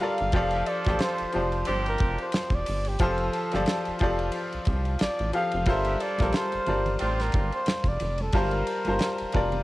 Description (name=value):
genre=R&B, neo-soul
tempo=90 BPM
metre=4/4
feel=swing 58% on 16ths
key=F major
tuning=A4 = 439 Hz
part: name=warm flugelhorn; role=melody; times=0.0-9.6 s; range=G4 to F5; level=-30 LUFS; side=right 1 dB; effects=none
part: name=bright grand piano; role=accompaniment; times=0.0-9.6 s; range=F3 to A5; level=-28 LUFS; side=left 1 dB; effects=cassette tape
part: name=rubbery square bass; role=bass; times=0.2-9.6 s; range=E1 to C2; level=-30 LUFS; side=equal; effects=none
part: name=damped 70s drum kit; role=drums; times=0.2-9.6 s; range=hi-hat, kick drum, ride cymbal, snare drum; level=-29 LUFS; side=equal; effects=none
part: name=clear horn section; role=stabs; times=0.5-7.6 s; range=C4 to A4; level=-34 LUFS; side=right 2 dB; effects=cassette tape
part: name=congas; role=percussion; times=5.7-9.6 s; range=none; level=-40 LUFS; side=right 3 dB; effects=none
room=light reverb, studio reverb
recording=home recording on cassette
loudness=-24 LUFS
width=side -18 dB against mid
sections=0.0-9.6 A section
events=none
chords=0.3 F6; 5.7 Gm11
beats=| 0.33 1.00 1.67 2.33 | 3.00 3.67 4.33 5.00 | 5.67 6.33 7.00 7.67 | 8.33 9.00